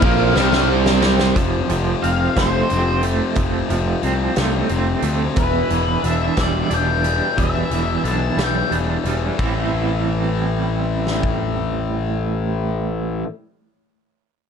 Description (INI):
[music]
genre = quiet-loud alternative rock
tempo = 60 BPM (dotted quarters)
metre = 6/8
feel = straight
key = A minor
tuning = A4 = 440 Hz
[part]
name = octave-fuzz lead guitar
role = melody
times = 0.0-8.7 s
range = B4 to A5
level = -24 LUFS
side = left 3 dB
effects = distortion, tape echo, plate reverb
[part]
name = mellow tonewheel organ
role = sustained chords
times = 0.0-1.3 s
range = G3 to G5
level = -27 LUFS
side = equal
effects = none
[part]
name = distorted electric guitar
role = riff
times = 0.0-13.3 s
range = E2 to C4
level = -24 LUFS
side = left 12 dB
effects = overdrive
[part]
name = distorted electric guitar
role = riff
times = 0.0-1.4 s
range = Bb2 to C4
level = -23 LUFS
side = equal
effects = overdrive
[part]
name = fuzz guitar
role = riff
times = 0.0-1.3 s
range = Bb2 to C4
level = -20 LUFS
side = right 15 dB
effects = distortion
[part]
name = fuzz picked electric bass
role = bass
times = 0.0-13.2 s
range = E1 to D2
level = -22 LUFS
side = equal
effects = overdrive
[part]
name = big rock drum kit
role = drums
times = 0.0-11.4 s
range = crash cymbal, hi-hat, kick drum, ride cymbal, snare drum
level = -24 LUFS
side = equal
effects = none
[part]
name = electric guitar at the edge of break-up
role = arpeggios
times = 1.4-13.3 s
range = E2 to E4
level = -24 LUFS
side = right 9 dB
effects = tremolo, plate reverb
[sound]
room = light reverb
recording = none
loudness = -17 LUFS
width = side -7 dB against mid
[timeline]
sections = 0.0-1.4 A section; 1.4-9.4 B section; 9.4-13.4 C section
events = drum fill 0.4-1.4; lead electric guitar solo 1.4-9.4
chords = 0.0 Am; 0.4 C5; 1.4 F; 5.4 Em7; 9.4 Am7